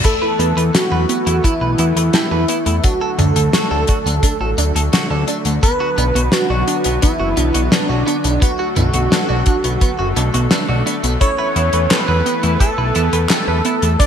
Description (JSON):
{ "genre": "synthwave", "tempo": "86 BPM", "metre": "4/4", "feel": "straight", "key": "unclear", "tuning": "A4 = 439 Hz", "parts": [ { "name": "lush unison pad", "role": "sustained chords", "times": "0.0-14.1 s", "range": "D3 to D4", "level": "-24 LUFS", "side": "left 1 dB", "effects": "chorus, sidechain pumping" }, { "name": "warbly dusty pluck", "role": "arpeggios", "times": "0.0-14.1 s", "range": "A3 to D5", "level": "-25 LUFS", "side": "right 3 dB", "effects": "chorus, vintage 12-bit sampler grit, ping-pong delay" }, { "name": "clean electric guitar", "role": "riff", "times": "0.0-14.1 s", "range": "B3 to B4", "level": "-25 LUFS", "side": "right 3 dB", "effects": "lush chorus, ping-pong delay" }, { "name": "damped 70s drum kit", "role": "drums", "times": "0.0-14.1 s", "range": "crash cymbal, handclaps, hi-hat, snare drum, toms", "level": "-19 LUFS", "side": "left 2 dB", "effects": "small room ambience, gated reverb" }, { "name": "kick drum", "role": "drums", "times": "0.0-14.1 s", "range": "none", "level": "-15 LUFS", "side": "equal", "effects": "small room ambience" }, { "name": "wide unison lead", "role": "melody", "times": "0.1-14.1 s", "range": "D4 to D5", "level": "-20 LUFS", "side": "right 1 dB", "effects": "digital delay" }, { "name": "FM electric piano with soft pad layer", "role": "second line", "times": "0.1-14.1 s", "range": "D4 to D5", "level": "-26 LUFS", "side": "left 1 dB", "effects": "none" }, { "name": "fat analog bass", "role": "bass", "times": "0.4-14.0 s", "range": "F#1 to E2", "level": "-18 LUFS", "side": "equal", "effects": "tube saturation, sidechain pumping" } ], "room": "light reverb, studio ambience", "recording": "bright 1980s-style digital production", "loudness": "-14 LUFS", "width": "side -8 dB against mid", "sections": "0.0-14.1 A section", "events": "none", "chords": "0.0 Esus4; 2.8 D; 5.6 Bm; 11.2 Esus4", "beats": "| 0.05 0.74 1.44 2.14 | 2.84 3.54 4.23 4.93 | 5.63 6.33 7.02 7.72 | 8.42 9.12 9.81 10.51 | 11.21 11.91 12.61 13.30 | 14.00" }